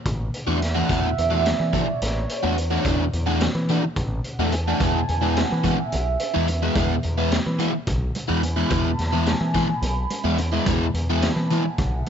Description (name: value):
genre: psychedelic rock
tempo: 215 BPM (eighths)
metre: 7/8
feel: straight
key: E mixolydian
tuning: A4 = 440 Hz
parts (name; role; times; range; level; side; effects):
- growling picked electric bass; bass; 0.1-12.0 s; A1 to E3; -24 LUFS; equal; overdrive
- raw garage drum kit; drums; 0.1-12.1 s; hi-hat, kick drum, snare drum; -27 LUFS; equal; none
- warbly tape-like pad; sustained chords; 0.6-12.1 s; C#5 to B5; -28 LUFS; right 4 dB; chorus, built-in reverb
- crunchy overdriven guitar; riff; 0.5-11.7 s; E3 to F#4; -24 LUFS; left 1 dB; flanger
- congas; percussion; 4.8-12.1 s; none; -36 LUFS; right 5 dB; none
room: light reverb, small room ambience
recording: echo-heavy mix, nothing above 7.8 kHz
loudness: -20 LUFS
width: side -8 dB against mid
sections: 0.0-12.1 A section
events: ambient pad solo 0.0-12.1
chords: 0.0 D; 4.8 E